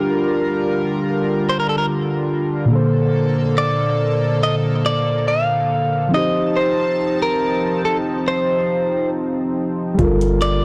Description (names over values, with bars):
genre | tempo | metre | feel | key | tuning
contemporary R&B | 70 BPM | 4/4 | swing 54% on 16ths | G minor | A4 = 440 Hz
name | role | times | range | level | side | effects
direct-recorded clean electric guitar | melody | 0.0-10.6 s | A4 to F5 | -23 LUFS | equal | none
muted felt-like synth keys | accompaniment | 0.0-10.6 s | Bb2 to C5 | -22 LUFS | equal | chorus
chorused pulse-width pad | sustained chords | 0.0-10.6 s | D3 to A5 | -26 LUFS | equal | none
warm 808-style bass | bass | 10.0-10.6 s | G1 | -22 LUFS | equal | none
smooth R&B drum kit | drums | 10.0-10.6 s | hi-hat, kick drum | -24 LUFS | equal | none
room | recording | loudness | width
light reverb | blown-out, overdriven recording, overdrive | -19 LUFS | mono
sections
0.0-10.6 A section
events
none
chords
0.0 Gm7; 2.7 Bbmaj7; 6.1 F7; 10.0 Gm7